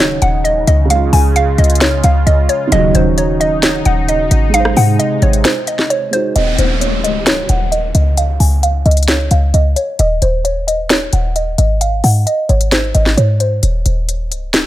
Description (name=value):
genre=hip hop, trap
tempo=132 BPM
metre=4/4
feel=half-time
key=unclear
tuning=A4 = 440 Hz
part: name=hollow square pluck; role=melody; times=0.0-13.6 s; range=C5 to Ab5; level=-17 LUFS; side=equal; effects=chorus, low-pass filter, tape echo
part: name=felt-muted upright piano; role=accompaniment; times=0.0-6.4 s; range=Db3 to C5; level=-20 LUFS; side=right 4 dB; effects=none
part: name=sweeping resonant pad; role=sustained chords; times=0.0-6.3 s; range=C3 to F4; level=-21 LUFS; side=right 1 dB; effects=chorus
part: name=short 808-style bass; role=bass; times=0.0-14.7 s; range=Db1 to Ab2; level=-13 LUFS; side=equal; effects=none
part: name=trap drum kit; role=drums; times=0.0-14.6 s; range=hi-hat, rim click, snare drum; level=-16 LUFS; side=left 1 dB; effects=none
part: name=analog synth brass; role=stabs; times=2.7-3.0 s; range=Eb2 to Gb3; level=-16 LUFS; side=right 2 dB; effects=chorus
part: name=downlifter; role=sound effects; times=6.4-10.0 s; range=none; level=-22 LUFS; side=left 2 dB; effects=none
room=little or no reverb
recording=none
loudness=-11 LUFS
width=side -14 dB against mid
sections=0.0-6.4 A section; 6.4-14.7 B section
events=break 5.4-6.4, 13.6-14.7; filter sweep on synth pluck 6.4-14.7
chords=0.0 Ebm7; 0.9 Db; 2.7 Ebm7; 4.5 Ab; 6.4 Dbsus2; 8.2 Dbadd9; 10.0 Eb7(no3); 11.8 Abadd11; 13.6 Dbsus2